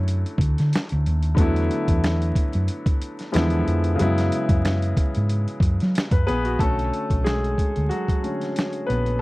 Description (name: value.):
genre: R&B, neo-soul.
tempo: 92 BPM.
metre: 4/4.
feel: swing 55% on 16ths.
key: B dorian.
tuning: A4 = 440 Hz.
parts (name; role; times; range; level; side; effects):
clear grand piano; accompaniment; 0.0-9.2 s; C#3 to B4; -25 LUFS; left 1 dB; none.
hollow-body short-scale fingered electric bass; bass; 0.0-9.2 s; A#1 to F#3; -22 LUFS; equal; none.
boom bap sampler-style drum kit; drums; 0.1-9.2 s; hi-hat, kick drum, snare drum; -22 LUFS; equal; none.
room: little or no reverb.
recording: dry, close 1970s-style studio recording, vinyl crackle.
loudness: -20 LUFS.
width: side -20 dB against mid.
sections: 0.0-6.6 A section; 6.6-9.2 B section.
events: grand piano solo 6.6-9.2.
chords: 0.0 Dmaj9; 1.4 E9sus4; 3.3 E7b9; 4.0 F#9sus4; 6.6 Bm9.